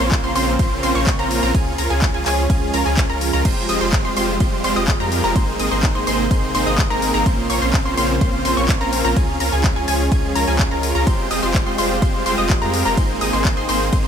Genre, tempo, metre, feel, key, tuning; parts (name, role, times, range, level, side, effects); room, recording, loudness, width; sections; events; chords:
EDM, festival progressive house; 126 BPM; 4/4; straight; F minor; A4 = 438 Hz
lush unison pad; sustained chords; 0.0-14.1 s; C3 to F4; -26 LUFS; right 1 dB; chorus, sidechain pumping
wide unison pluck; arpeggios; 0.0-14.1 s; Ab5 to Eb6; -24 LUFS; equal; sidechain pumping, digital delay
supersaw chords; riff; 0.0-14.1 s; Ab3 to Eb5; -21 LUFS; equal; sidechain pumping, digital delay
saturated sub bass; bass; 0.0-14.1 s; F1 to F2; -25 LUFS; equal; sidechain pumping
electronic kick drum; drums; 0.1-14.0 s; -18 LUFS; equal; overdrive, small room ambience
house drum kit; drums; 0.1-14.0 s; crash cymbal, handclaps, hi-hat, ride cymbal; -26 LUFS; left 1 dB; overdrive, small room ambience
digital ambience; -16 LUFS; side -8 dB against mid
0.0-14.1 A section
0.0 Bbmadd9; 1.5 Db; 3.5 Fmadd9; 5.4 Abadd9; 7.3 Bbmadd9; 9.2 Db; 11.1 Fmadd9; 13.0 Abadd9